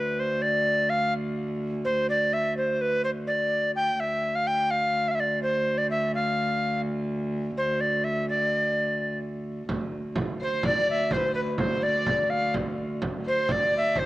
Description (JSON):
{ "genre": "medieval dance", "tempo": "84 BPM (dotted quarters)", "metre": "6/8", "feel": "straight", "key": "D dorian", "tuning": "A4 = 441 Hz", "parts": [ { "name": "bright reedy tenor recorder", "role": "melody", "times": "0.0-14.1 s", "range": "B4 to G5", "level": "-24 LUFS", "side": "equal", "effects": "cassette tape" }, { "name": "clear viola da gamba", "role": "drone", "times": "0.0-14.1 s", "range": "D2", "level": "-31 LUFS", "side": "right 1 dB", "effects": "cassette tape" }, { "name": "frame drum", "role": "percussion", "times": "9.7-14.1 s", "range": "none", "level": "-31 LUFS", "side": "right 2 dB", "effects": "none" }, { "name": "dark fiddle", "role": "second line", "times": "10.4-14.1 s", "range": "B4 to D5", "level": "-30 LUFS", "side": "left 2 dB", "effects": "cassette tape" } ], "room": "moderate spring reverb, RT60 2.0 s", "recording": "home recording on cassette", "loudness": "-24 LUFS", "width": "side -17 dB against mid", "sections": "0.0-9.7 A section; 9.7-14.1 A section", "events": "none", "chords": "none" }